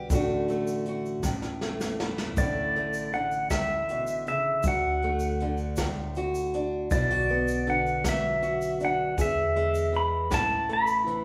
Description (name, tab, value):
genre	acoustic folk duo or small band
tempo	53 BPM (dotted quarters)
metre	6/8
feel	straight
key	unclear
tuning	A4 = 440 Hz
part	fingerpicked steel-string acoustic guitar	accompaniment	0.0-11.2 s	D2 to G#4	-32 LUFS	equal	none
part	upright bass	bass	0.0-11.2 s	A1 to E2	-36 LUFS	equal	none
part	soft brush drum kit	drums	0.1-11.2 s	hi-hat, kick drum, snare drum	-33 LUFS	equal	none
part	egg shaker	percussion	0.1-11.0 s	none	-49 LUFS	equal	none
part	pedal steel guitar	melody	2.4-11.2 s	D5 to B5	-29 LUFS	equal	none
room	wet stone room reverb, RT60 1.1 s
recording	band playing live in one room, studio reverb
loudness	-27 LUFS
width	mono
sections	0.0-2.4 A section; 2.4-11.2 B section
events	drum fill 1.2-2.4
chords	0.1 D/A; 1.2 A5; 2.4 Asus4; 4.6 D; 6.9 Bm; 9.2 E7; 10.3 A5